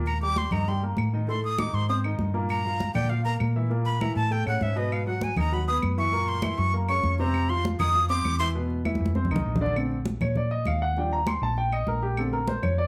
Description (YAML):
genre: Afro-Cuban jazz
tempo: 198 BPM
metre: 4/4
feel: straight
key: Bb major from 9.8 s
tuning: A4 = 439 Hz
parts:
  - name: warm grand piano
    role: accompaniment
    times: 0.0-12.9 s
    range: A2 to C6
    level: -32 LUFS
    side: equal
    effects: none
  - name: hollow-body short-scale fingered electric bass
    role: bass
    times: 0.0-12.9 s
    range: Bb1 to Bb2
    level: -30 LUFS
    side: equal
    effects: none
  - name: breathy bright jazz flute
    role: melody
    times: 0.1-8.5 s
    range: Eb5 to Eb6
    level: -30 LUFS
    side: equal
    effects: none
  - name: claves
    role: percussion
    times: 0.1-12.8 s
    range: none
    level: -41 LUFS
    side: equal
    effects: none
  - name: congas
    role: percussion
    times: 0.1-12.9 s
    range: none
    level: -35 LUFS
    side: equal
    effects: none
room: wet large studio reverb, RT60 0.8 s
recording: band playing live in one room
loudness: -26 LUFS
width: mono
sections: 0.1-9.8 A section; 9.8-12.9 A section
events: flute solo 0.0-9.8; drum fill 8.9-9.8; grand piano solo 9.8-12.9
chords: 0.1 Eb; 1.3 Cm69; 1.9 Abadd9; 2.5 Gm7; 3.7 Asus2; 4.3 Aadd9; 4.9 Abm7; 6.1 Gb7#11; 7.3 F5; 8.6 E5; 9.2 F5; 9.8 Bbmaj7; 11.0 Ebmaj7; 12.2 Bbmaj7